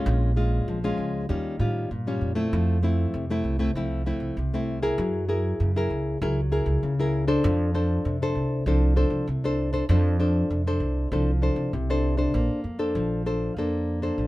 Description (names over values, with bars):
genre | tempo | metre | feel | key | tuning
samba and choro | 98 BPM | 4/4 | straight | F major | A4 = 441 Hz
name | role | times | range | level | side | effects
nylon-string guitar | accompaniment | 0.0-14.3 s | Bb2 to C5 | -26 LUFS | left 1 dB | none
upright bass | bass | 0.1-14.3 s | Bb1 to A2 | -25 LUFS | right 1 dB | none
room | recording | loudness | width
moderate studio ambience, RT60 0.5 s | minimal, uncompressed stereo recording | -22 LUFS | side -18 dB against mid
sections
0.0-12.3 A section; 12.3-14.3 B section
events
none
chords
0.1 Bbm7; 1.3 Eb9; 2.5 Fmaj7; 5.0 Gb9; 7.4 F6; 12.3 Bbmaj9